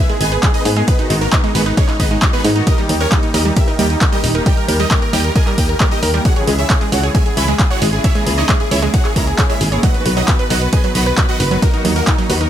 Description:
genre	uplifting trance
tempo	134 BPM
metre	4/4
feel	straight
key	unclear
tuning	A4 = 442 Hz
part	supersaw chords	melody	0.0-12.5 s	A#3 to B5	-22 LUFS	right 1 dB	phaser, sidechain pumping, dub echo
part	supersaw stab	second line	0.0-12.5 s	D#4 to B5	-24 LUFS	right 1 dB	sidechain pumping, dub echo
part	muted studio string section	sustained chords	0.0-12.5 s	C#3 to G#4	-24 LUFS	left 2 dB	sidechain pumping
part	wide unison pluck	arpeggios	0.0-12.5 s	F#3 to C#5	-24 LUFS	right 4 dB	sidechain pumping, dub echo
part	punchy analog drum machine	drums	0.1-12.5 s	handclaps, hi-hat	-21 LUFS	right 1 dB	none
part	solid FM bass	bass	0.2-12.5 s	D#1 to G#2	-17 LUFS	equal	sidechain pumping
part	electronic kick drum	drums	0.4-12.2 s	none	-15 LUFS	equal	none
room	little or no reverb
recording	none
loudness	-12 LUFS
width	side -10 dB against mid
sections	0.0-12.5 A section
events	none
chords	0.0 G#m; 2.7 D#; 6.3 C#m; 9.8 B; 11.6 D#m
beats	0.43 | 0.88 1.33 1.77 2.22 | 2.67 3.12 3.56 4.01 | 4.46 4.91 5.36 5.80 | 6.25 6.70 7.15 7.59 | 8.04 8.49 8.94 9.39 | 9.83 10.28 10.73 11.18 | 11.62 12.07

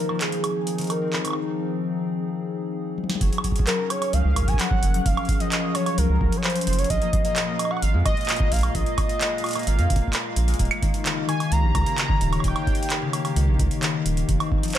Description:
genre	IDM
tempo	130 BPM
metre	4/4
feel	straight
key	Gb lydian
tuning	A4 = 440 Hz
part	warm velvety synth lead	melody	0.0-14.8 s	Ab4 to Bb5	-28 LUFS	right 1 dB	chorus, cassette tape, ping-pong delay
part	warbly tape-like pad	sustained chords	0.0-14.8 s	Bb2 to F5	-32 LUFS	equal	chorus, built-in reverb, vintage 12-bit sampler grit
part	concert harp	arpeggios	0.0-14.8 s	Db3 to F4	-28 LUFS	left 6 dB	tape echo
part	booming analog drum machine	drums	0.1-14.8 s	handclaps, hi-hat, snare drum, toms, woodblock	-28 LUFS	right 2 dB	none
part	round analog bass	bass	3.2-14.4 s	Eb1 to F2	-22 LUFS	right 1 dB	tube saturation
part	electronic kick drum	drums	3.2-14.6 s	none	-24 LUFS	right 1 dB	none
room	light reverb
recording	none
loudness	-20 LUFS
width	side -11 dB against mid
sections	0.0-3.2 A section; 3.2-14.8 B section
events	break 1.4-3.2; drum fill 3.0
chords	0.0 Fm7; 3.2 Gbmaj7; 6.9 Bbsus4; 10.6 Eb7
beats	0.44 0.90 | 1.36 1.82 2.29 2.75 | 3.21 3.67 4.13 4.59 | 5.06 5.52 5.98 6.44 | 6.90 7.36 7.83 8.29 | 8.75 9.21 9.67 10.13 | 10.59 11.06 11.52 11.98 | 12.44 12.90 13.36 13.82 | 14.29 14.75

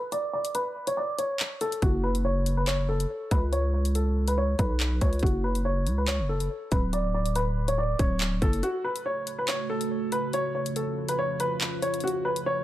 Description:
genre	hip hop, drill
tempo	141 BPM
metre	4/4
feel	half-time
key	F# harmonic minor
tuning	A4 = 440 Hz
part	warm upright piano	melody	0.0-12.6 s	F#4 to D5	-29 LUFS	equal	low-pass filter, tape echo
part	drill drum kit	drums	0.1-12.5 s	handclaps, hi-hat, kick drum	-28 LUFS	equal	none
part	growling 808-style bass	bass	1.8-8.6 s	D1 to C#2	-26 LUFS	equal	none
part	deep dark ambient pad	sustained chords	9.2-12.6 s	C#3 to F#4	-32 LUFS	right 3 dB	chorus, built-in reverb
room	digital ambience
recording	none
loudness	-25 LUFS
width	side -14 dB against mid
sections	0.0-12.6 A section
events	break 0.0-1.8, 8.6-12.6; filter sweep on upright piano 0.0-8.6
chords	0.0 N.C.; 1.8 F#m; 3.5 Bsus2; 5.2 F#m; 6.9 Dmaj7(no3); 8.6 F#m; 10.3 C#; 12.0 F#m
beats	| 0.12 0.55 0.97 1.40 | 1.82 2.25 2.67 3.10 | 3.52 3.95 4.38 4.80 | 5.23 5.65 6.08 6.50 | 6.93 7.36 7.78 8.21 | 8.63 9.06 9.48 9.91 | 10.33 10.76 11.19 11.61 | 12.04 12.46

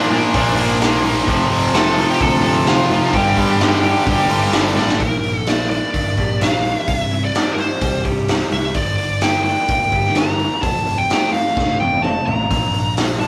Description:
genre	quiet-loud alternative rock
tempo	128 BPM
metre	4/4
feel	straight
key	unclear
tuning	A4 = 443 Hz
part	smooth overdriven lead guitar	melody	0.0-13.3 s	D4 to Bb5	-22 LUFS	equal	none
part	distorted electric guitar	riff	0.0-5.0 s	F2 to Bb3	-27 LUFS	equal	none
part	overdriven electric guitar	riff	0.0-5.0 s	F2 to Bb3	-25 LUFS	equal	none
part	tight distorted guitar	riff	0.0-5.0 s	F2 to Bb3	-21 LUFS	equal	distortion
part	picked electric bass	bass	0.0-13.3 s	E1 to Bb2	-27 LUFS	equal	none
part	raw garage drum kit	drums	0.1-13.3 s	hi-hat, kick drum, snare drum, toms	-21 LUFS	equal	none
part	electric guitar through a small old amp	arpeggios	5.0-13.3 s	F2 to G4	-30 LUFS	equal	none
room	moderate small room ambience, RT60 0.5 s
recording	rough rehearsal-room recording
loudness	-17 LUFS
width	mono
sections	0.0-5.0 A section; 5.0-13.3 B section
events	drum fill 4.8, 11.6-12.5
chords	0.0 Bb; 1.3 F; 3.1 G5; 5.0 Bb6; 6.9 C; 8.8 Gm; 10.6 F; 12.5 Bb6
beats	0.35 0.82 | 1.28 1.75 2.21 2.67 | 3.14 3.61 4.07 4.54 | 5.01 5.47 5.94 6.41 | 6.88 7.35 7.82 8.29 | 8.76 9.22 9.69 10.16 | 10.63 11.10 11.57 12.04 | 12.50 12.97

